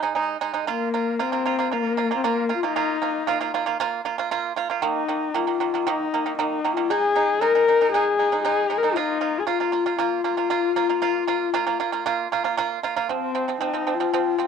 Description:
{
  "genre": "mongolian traditional, Mongolian folk",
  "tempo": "116 BPM",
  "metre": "4/4",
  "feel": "straight",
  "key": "unclear",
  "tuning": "A4 = 438 Hz",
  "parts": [
    { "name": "pipa", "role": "arpeggios", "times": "0.0-14.5 s", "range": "Eb3 to F4", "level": "-24 LUFS", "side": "right 8 dB", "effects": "none" },
    { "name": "warm horsehead fiddle", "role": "melody", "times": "0.7-14.5 s", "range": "Bb3 to Bb4", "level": "-23 LUFS", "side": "left 7 dB", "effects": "none" }
  ],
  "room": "wet spring reverb, RT60 1.1 s, small room ambience",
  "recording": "home recording on cassette",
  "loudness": "-21 LUFS",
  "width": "side -6 dB against mid",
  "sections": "0.0-13.1 A section; 13.1-14.5 B section",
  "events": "none",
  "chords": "0.0 Ab5; 0.7 Bb5; 4.8 Eb5; 6.9 Ab5; 9.0 Bb5; 13.1 F5"
}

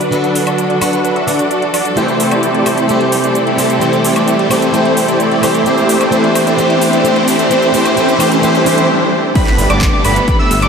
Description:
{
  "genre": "EDM, festival progressive house",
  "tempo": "130 BPM",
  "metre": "4/4",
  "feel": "straight",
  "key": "unclear",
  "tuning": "A4 = 439 Hz",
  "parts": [
    { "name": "picked plugged-in swing-style acoustic guitar", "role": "accompaniment", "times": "0.0-8.9 s", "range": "D3 to G4", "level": "-18 LUFS", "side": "equal", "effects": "sidechain pumping, diffuse ambient delay" },
    { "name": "rich symphonic string section", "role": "sustained chords", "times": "0.0-10.7 s", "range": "C3 to C5", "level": "-20 LUFS", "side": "equal", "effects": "sidechain pumping" },
    { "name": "supersaw chords", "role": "riff", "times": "0.0-10.7 s", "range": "A3 to E5", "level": "-13 LUFS", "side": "equal", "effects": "cassette tape, sidechain pumping, low-pass filter, diffuse ambient delay" },
    { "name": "house drum kit", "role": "drums", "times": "0.0-10.7 s", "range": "crash cymbal, handclaps, hi-hat, shaker, woodblock", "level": "-22 LUFS", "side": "equal", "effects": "overdrive" },
    { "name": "riser, swell and impact", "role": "sound effects", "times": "0.8-10.7 s", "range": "none", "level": "-22 LUFS", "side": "right 1 dB", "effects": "none" },
    { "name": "wide unison lead", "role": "arpeggios", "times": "9.4-10.7 s", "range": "B5 to E6", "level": "-16 LUFS", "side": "equal", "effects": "sidechain pumping, diffuse ambient delay" },
    { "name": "electronic kick drum", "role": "drums", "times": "9.4-10.4 s", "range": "none", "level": "-15 LUFS", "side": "equal", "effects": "overdrive" },
    { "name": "detuned saw bass", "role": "bass", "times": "9.6-10.7 s", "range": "G1", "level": "-16 LUFS", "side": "equal", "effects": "sidechain pumping" }
  ],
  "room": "wet huge ambient reverb, RT60 4.7 s",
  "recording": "dreamy mix soaked in reverb",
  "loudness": "-10 LUFS",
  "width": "side -6 dB against mid",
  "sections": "0.0-9.4 A section; 9.4-10.7 B section",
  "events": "build-up 0.0-9.4; filter sweep on supersaw synth 0.0-9.4; swell 8.4-9.4; break 8.9-9.4; drop 9.4-10.7; impact 9.4-10.7",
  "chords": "0.0 Bm; 2.0 Am7/C; 5.7 Cadd9; 9.4 Gadd9"
}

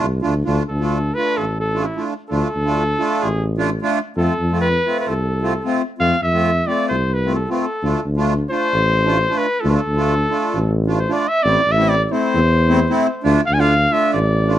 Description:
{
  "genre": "klezmer",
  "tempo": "132 BPM",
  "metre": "4/4",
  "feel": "straight",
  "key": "D minor",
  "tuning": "A4 = 436 Hz",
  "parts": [
    { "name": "accordion", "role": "accompaniment", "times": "0.0-14.6 s", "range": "A3 to F4", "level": "-21 LUFS", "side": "right 1 dB", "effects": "light tremolo tuning" },
    { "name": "mellow tuba", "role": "bass", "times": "0.0-14.6 s", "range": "A1 to F2", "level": "-19 LUFS", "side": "equal", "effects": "none" },
    { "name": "warm cornet", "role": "melody", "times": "0.7-14.6 s", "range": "E4 to G#5", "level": "-19 LUFS", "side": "equal", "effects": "none" }
  ],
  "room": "light reverb",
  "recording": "dark, warm production",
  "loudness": "-16 LUFS",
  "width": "side -12 dB against mid",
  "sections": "0.5-14.6 A section",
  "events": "speeding up 0.0-14.6; cornet solo 0.5-14.6",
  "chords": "0.5 Dm; 4.2 F; 7.8 Dm; 11.4 Am; 13.2 Dm"
}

